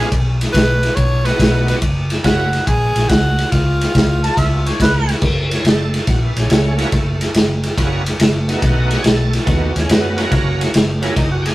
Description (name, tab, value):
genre	electric blues shuffle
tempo	141 BPM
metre	4/4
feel	swing 67% on 8ths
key	unclear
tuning	A4 = 440 Hz
part	breathy tenor saxophone	melody	0.0-4.8 s	E#4 to C#5	-20 LUFS	equal	none
part	bright tonewheel organ	accompaniment	0.0-2.5, 5.5-11.5 s	F#3 to C#5	-23 LUFS	right 3 dB	slow rotary speaker, overdrive, chorus vibrato
part	vintage muted fingered electric bass	bass	0.0-11.5 s	F#1 to F#2	-18 LUFS	equal	none
part	crunchy breakbeat drum kit	drums	0.0-11.5 s	crash cymbal, kick drum, ride cymbal, snare drum	-16 LUFS	equal	none
part	mellow harmonica	second line	4.2-5.2 s	B4 to A5	-20 LUFS	equal	none
room	moderate stone room reverb, RT60 1.2 s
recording	rough rehearsal-room recording, warm saturation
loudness	-13 LUFS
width	side -17 dB against mid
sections	0.0-5.2 A section; 5.2-11.5 B section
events	none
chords	0.1 B7; 1.8 F#7; 3.5 C#; 5.2 F#7; 8.6 B7; 10.3 F#7